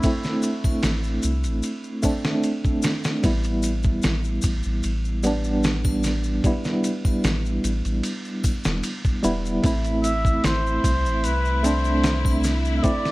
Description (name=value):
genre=trip hop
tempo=75 BPM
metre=4/4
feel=straight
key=A minor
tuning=A4 = 440 Hz
part: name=trumpet with cup mute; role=melody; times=0.0-0.4, 10.0-13.1 s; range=E4 to E5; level=-28 LUFS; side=equal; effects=tape echo
part: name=tine electric piano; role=accompaniment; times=0.0-13.1 s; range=G3 to E4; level=-24 LUFS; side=right 1 dB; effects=tremolo, vintage 12-bit sampler grit, low-pass filter, tape echo
part: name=dusty soul sampler-style drum kit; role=drums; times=0.0-13.1 s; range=kick drum, ride cymbal, snare drum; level=-26 LUFS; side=equal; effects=vintage 12-bit sampler grit, studio reverb
part: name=maracas and triangle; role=percussion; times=0.0-13.1 s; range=none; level=-37 LUFS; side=left 4 dB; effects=none
part: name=soft dub sub bass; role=bass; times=0.8-12.8 s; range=E1 to C2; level=-24 LUFS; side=equal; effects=none
part: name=clear studio string section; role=sustained chords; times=9.6-13.1 s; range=E4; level=-32 LUFS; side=left 2 dB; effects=vintage 12-bit sampler grit
room=small room ambience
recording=vinyl crackle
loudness=-20 LUFS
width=side -20 dB against mid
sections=0.0-13.1 A section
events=none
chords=0.0 Am; 3.2 Em/A; 9.6 Am